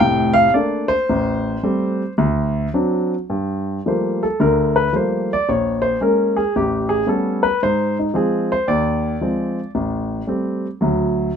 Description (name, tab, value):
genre	solo jazz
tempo	111 BPM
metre	4/4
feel	swing 67% on 8ths, rubato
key	G minor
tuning	A4 = 435 Hz
part	warm grand piano	solo	0.0-11.3 s	F1 to G5	-17 LUFS	equal	none
room	light reverb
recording	none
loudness	-17 LUFS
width	side -7 dB against mid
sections	0.0-3.3 A section; 3.3-11.4 A section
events	grand piano solo 0.0-3.3, 3.3-11.4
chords	0.0 Bbmaj7; 1.1 Am7; 2.2 D7; 3.3 Gm9; 5.5 Bbm7; 6.5 A9; 7.6 Ab6; 9.7 Am7; 10.8 D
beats	0.00 0.54 | 1.08 1.62 2.17 2.73 | 3.29 3.85 4.39 4.94 | 5.48 6.01 6.54 7.08 | 7.61 8.13 8.67 9.21 | 9.73 10.27 10.81